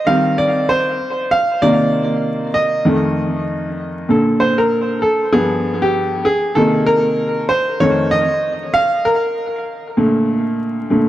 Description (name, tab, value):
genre	hip hop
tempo	97 BPM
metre	4/4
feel	swing 60% on 16ths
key	Bb major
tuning	A4 = 436 Hz
part	clear upright piano	solo	0.0-11.1 s	F2 to F5	-14 LUFS	equal	tape echo
room	moderate plate reverb, RT60 3.4 s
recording	echo-heavy mix, vinyl crackle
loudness	-14 LUFS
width	side -13 dB against mid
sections	0.0-4.1 A section; 4.1-11.1 B section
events	upright piano solo 0.0-4.1, 4.1-11.1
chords	0.0 Eb6; 1.6 Cm9; 2.9 F7; 4.1 Bbmaj7; 5.3 G7; 6.6 Cm7; 7.8 Faug7; 9.1 Bbmaj7